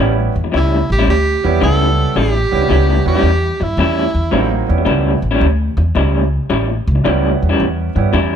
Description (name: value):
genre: blues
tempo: 110 BPM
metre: 4/4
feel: swing 68% on 8ths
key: A mixolydian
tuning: A4 = 440 Hz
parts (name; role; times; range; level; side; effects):
- clear concert grand piano; accompaniment; 0.0-8.1 s; F#3 to E4; -20 LUFS; right 8 dB; none
- electric guitar through a small old amp; riff; 0.0-8.4 s; A2 to E4; -18 LUFS; left 2 dB; tremolo
- upright bass; bass; 0.0-8.4 s; A1 to G2; -16 LUFS; equal; none
- breathy tenor saxophone; melody; 0.6-4.7 s; E4 to A4; -18 LUFS; right 2 dB; none
room: light reverb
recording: band playing live in one room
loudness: -12 LUFS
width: side -8 dB against mid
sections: 0.0-8.4 A section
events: none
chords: 0.0 A7